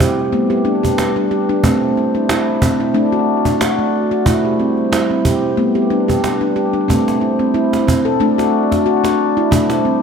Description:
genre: world meditative, meditative tuned percussion.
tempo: 91 BPM.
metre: 4/4.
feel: swing 55% on 16ths.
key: A dorian.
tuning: A4 = 441 Hz.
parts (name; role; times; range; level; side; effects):
glass harmonica; sustained chords; 0.0-10.0 s; G3 to D5; -21 LUFS; left 1 dB; none.
handpan; arpeggios; 0.0-10.0 s; A3 to A4; -15 LUFS; equal; tape echo.
cajon; percussion; 0.0-9.8 s; none; -19 LUFS; right 2 dB; none.
room: moderate plate reverb, RT60 3.0 s.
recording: none.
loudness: -13 LUFS.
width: side -6 dB against mid.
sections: 0.0-6.9 A section; 6.9-10.0 B section.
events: none.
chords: 0.3 G; 1.6 Am; 3.0 D/A; 4.3 C; 5.6 G; 6.9 Am; 8.2 D/A; 9.5 C.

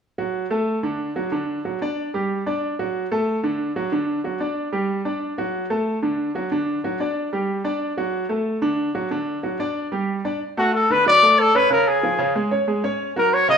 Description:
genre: jazz.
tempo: 185 BPM.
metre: 4/4.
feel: straight.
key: D major.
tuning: A4 = 440 Hz.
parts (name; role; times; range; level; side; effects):
clear concert grand piano; accompaniment; 0.2-13.6 s; C#3 to D5; -22 LUFS; right 1 dB; none.
warm trumpet; melody; 10.6-13.6 s; F#4 to Eb5; -15 LUFS; left 2 dB; none.
room: wet stone room reverb, RT60 1.1 s.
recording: band playing live in one room.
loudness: -19 LUFS.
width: side -7 dB against mid.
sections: 0.0-10.4 A section; 10.4-13.6 B section.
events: none.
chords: 0.0 D; 1.3 G5; 2.6 D; 3.9 G5; 5.2 D; 6.5 G5; 7.8 D; 9.1 G5; 10.4 D; 11.7 C#; 13.0 F#5.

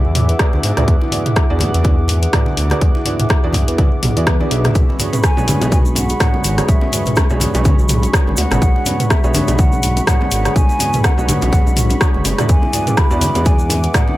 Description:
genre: afro house.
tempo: 124 BPM.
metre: 4/4.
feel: swing 57% on 16ths.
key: B dorian.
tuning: A4 = 439 Hz.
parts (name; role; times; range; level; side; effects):
dark analog pad; sustained chords; 0.0-14.2 s; D4 to D6; -27 LUFS; left 1 dB; chorus, sidechain pumping.
kalimba; arpeggios; 0.0-14.1 s; G#3 to E5; -26 LUFS; left 1 dB; sidechain pumping, digital delay.
smooth synth bass; bass; 0.1-13.9 s; F#1 to G#2; -18 LUFS; equal; sidechain pumping.
house drum kit; drums; 0.2-14.1 s; hi-hat, rim click, toms; -19 LUFS; equal; none.
congas; percussion; 0.2-14.2 s; none; -24 LUFS; left 1 dB; none.
felt-muted upright piano; stabs; 0.4-14.2 s; B3 to E5; -26 LUFS; right 4 dB; sidechain pumping, digital delay.
electronic kick drum; drums; 0.4-14.1 s; none; -14 LUFS; equal; none.
swell; sound effects; 4.0-4.8 s; none; -28 LUFS; right 1 dB; none.
tube shaker; percussion; 4.8-14.1 s; none; -28 LUFS; right 1 dB; none.
bongos; percussion; 4.9-14.2 s; none; -26 LUFS; right 1 dB; none.
mellow hollow concert flute; melody; 5.2-14.2 s; E5 to B5; -23 LUFS; equal; digital delay.
room: small room ambience.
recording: none.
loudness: -12 LUFS.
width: side -16 dB against mid.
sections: 0.0-14.2 A section.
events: swell 4.0-4.8.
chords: 0.0 E9; 4.8 Bm69; 12.5 E9.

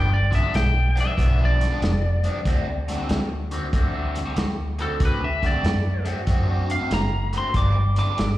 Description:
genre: electric blues shuffle.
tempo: 94 BPM.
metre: 4/4.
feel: swing 66% on 8ths.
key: unclear.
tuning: A4 = 440 Hz.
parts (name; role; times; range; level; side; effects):
lightly driven lead guitar; melody; 0.0-8.4 s; A4 to D6; -27 LUFS; equal; slapback echo.
overdriven semi-hollow guitar; riff; 0.0-8.3 s; G2 to B4; -28 LUFS; equal; phaser, slapback echo.
vintage muted fingered electric bass; bass; 0.0-8.4 s; F1 to F#2; -22 LUFS; equal; none.
vintage drum kit; drums; 0.3-8.4 s; hi-hat, kick drum, snare drum; -26 LUFS; equal; none.
room: light reverb, studio ambience.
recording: live gig heard through the venue's PA, recital hall reverb.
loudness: -20 LUFS.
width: side -15 dB against mid.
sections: 0.0-8.4 A section.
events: none.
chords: 0.0 G7; 2.5 D7; 7.5 G7.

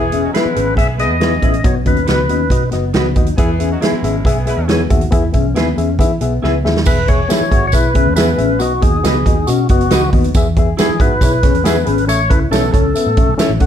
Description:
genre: uptempo 1960s-style soul.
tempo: 138 BPM.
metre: 4/4.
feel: straight.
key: E major.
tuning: A4 = 441 Hz.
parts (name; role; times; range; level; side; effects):
percussive tonewheel organ; melody; 0.0-2.7, 6.9-13.3 s; F#4 to E5; -18 LUFS; left 1 dB; overdrive, slow rotary speaker, plate reverb.
warm horn section; second line; 0.0-4.6 s; B2 to B4; -26 LUFS; right 3 dB; none.
reed electric piano; accompaniment; 0.0-13.7 s; A2 to F#5; -21 LUFS; left 3 dB; none.
mellow electric guitar; riff; 0.0-13.7 s; A3 to G#4; -22 LUFS; left 6 dB; none.
vintage muted fingered electric bass; bass; 0.0-13.7 s; E1 to E3; -18 LUFS; right 1 dB; none.
swinging big-band drum kit; drums; 0.1-13.7 s; crash cymbal, hi-hat, kick drum, snare drum; -16 LUFS; right 1 dB; none.
semi-hollow electric guitar; stabs; 0.3-13.5 s; D#4 to C#5; -23 LUFS; right 1 dB; wide subtle chorus.
tambourine; percussion; 6.9-13.5 s; none; -29 LUFS; right 6 dB; none.
room: light reverb.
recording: none.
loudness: -12 LUFS.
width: side -9 dB against mid.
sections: 0.0-6.9 A section; 6.9-13.7 B section.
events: drum fill 6.4-6.9.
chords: 0.0 E; 1.6 B; 3.4 E; 8.6 B; 10.3 E; 12.1 A.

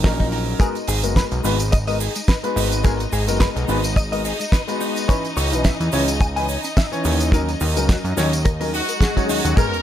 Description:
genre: nu-disco, nu disco.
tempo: 107 BPM.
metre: 4/4.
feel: swing 55% on 16ths.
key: G# minor.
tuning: A4 = 440 Hz.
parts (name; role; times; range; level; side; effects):
warm baby grand piano; accompaniment; 0.0-9.7 s; E3 to C#5; -24 LUFS; left 2 dB; sidechain pumping, ping-pong delay.
direct-recorded clean electric guitar; riff; 0.0-9.7 s; G#3 to G#5; -29 LUFS; left 2 dB; ensemble chorus, ping-pong delay.
fat analog bass; bass; 0.0-9.5 s; F#1 to F#2; -22 LUFS; equal; none.
damped 70s drum kit; drums; 0.0-9.8 s; hi-hat, snare drum, tambourine; -26 LUFS; right 3 dB; none.
kick drum; drums; 0.0-9.7 s; none; -17 LUFS; equal; none.
clear studio string section; sustained chords; 0.6-9.8 s; C#4 to D#5; -30 LUFS; left 2 dB; vintage 12-bit sampler grit, sidechain pumping.
egg shaker; percussion; 0.6-9.7 s; none; -36 LUFS; right 6 dB; none.
swell and sub drop; sound effects; 8.7-9.8 s; none; -28 LUFS; equal; none.
clear trumpet section; melody; 8.7-9.8 s; F#4 to A#4; -24 LUFS; left 1 dB; none.
room: small room ambience.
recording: none.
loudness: -17 LUFS.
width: side -11 dB against mid.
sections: 0.0-9.6 A section.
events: swell 8.7-9.6; impact 9.6.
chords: 0.0 D#m7; 0.6 G#m9; 5.1 C#m9; 7.3 D#m7.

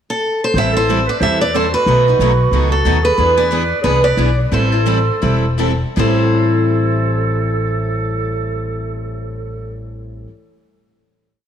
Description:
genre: acoustic string swing (jazz manouche).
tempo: 155-183 BPM.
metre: 4/4.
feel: swing 60% on 8ths.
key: A minor.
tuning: A4 = 442 Hz.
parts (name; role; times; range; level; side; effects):
picked steel-string acoustic guitar; melody; 0.1-10.3 s; A4 to E5; -18 LUFS; right 1 dB; none.
upright bass; bass; 0.5-10.2 s; E1 to E2; -18 LUFS; left 1 dB; none.
mellow clarinet; second line; 0.6-9.8 s; F#4 to C5; -23 LUFS; right 6 dB; none.
picked steel-string acoustic guitar; accompaniment; 0.6-10.3 s; A2 to A4; -23 LUFS; left 12 dB; none.
picked steel-string acoustic guitar; accompaniment; 0.6-10.3 s; A2 to B4; -23 LUFS; right 6 dB; none.
room: moderate echo chamber reverb, RT60 2.4 s.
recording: 1960s-style stereo with parts hard left and right.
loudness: -13 LUFS.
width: side -9 dB against mid.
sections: 0.0-0.5 pickup bar; 0.5-6.0 A section; 6.0-9.1 final chord.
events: slowing down 3.2-6.0.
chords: 0.0 N.C.; 0.5 Am7; 1.9 B7; 3.2 E7; 4.5 Am7.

